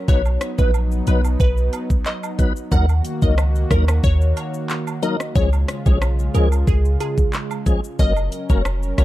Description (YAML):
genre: dancehall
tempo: 91 BPM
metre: 4/4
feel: straight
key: Eb minor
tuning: A4 = 440 Hz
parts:
  - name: warm analog pad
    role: sustained chords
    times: 0.0-9.0 s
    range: Db3 to Bb4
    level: -29 LUFS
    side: right 1 dB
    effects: chorus, sidechain pumping
  - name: glassy wavetable pluck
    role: melody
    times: 0.1-9.0 s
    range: Ab4 to Gb5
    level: -27 LUFS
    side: equal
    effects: chorus, ping-pong delay
  - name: tonewheel organ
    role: accompaniment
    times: 0.1-9.0 s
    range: F3 to B4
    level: -26 LUFS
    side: left 3 dB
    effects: overdrive, chorus vibrato, slow rotary speaker
  - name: clean 808-style bass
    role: bass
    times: 0.1-9.0 s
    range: F1 to Eb2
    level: -17 LUFS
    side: equal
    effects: none
  - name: afro-pop drum kit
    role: drums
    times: 0.1-9.0 s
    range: handclaps, hi-hat, kick drum, rim click, shaker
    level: -20 LUFS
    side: equal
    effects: overdrive
  - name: woodblock and cabasa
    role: percussion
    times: 0.3-9.0 s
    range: none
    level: -34 LUFS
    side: right 8 dB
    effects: none
room: digital ambience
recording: dark, warm production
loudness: -16 LUFS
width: side -15 dB against mid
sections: 0.0-9.0 A section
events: none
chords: 0.1 B; 2.7 Ebm; 5.4 Db; 8.0 Gb